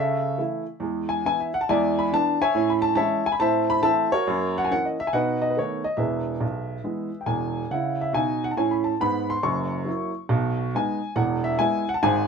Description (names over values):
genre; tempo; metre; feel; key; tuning
jazz, stride piano; 139 BPM; 4/4; swing 66% on 8ths; E major; A4 = 439 Hz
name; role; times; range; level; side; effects
warm upright piano; solo; 0.0-12.3 s; E1 to C#6; -22 LUFS; equal; none
room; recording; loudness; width
moderate club reverb, RT60 0.5 s; minimal, uncompressed stereo recording; -22 LUFS; side -6 dB against mid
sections
0.0-7.7 A section; 7.7-12.3 B section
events
none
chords
0.0 A/C#; 0.8 E; 1.7 E7; 2.5 Amaj7; 3.4 Am; 4.3 F#7; 5.1 B7; 6.0 E; 7.7 C#m; 9.4 F#7; 10.3 B69; 11.2 E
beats
0.39 | 0.82 1.25 1.68 2.11 | 2.54 2.98 3.41 3.84 | 4.27 4.70 5.13 5.56 | 6.00 6.43 6.86 7.29 | 7.72 8.15 8.58 9.01 | 9.44 9.87 10.30 10.73 | 11.16 11.59 12.02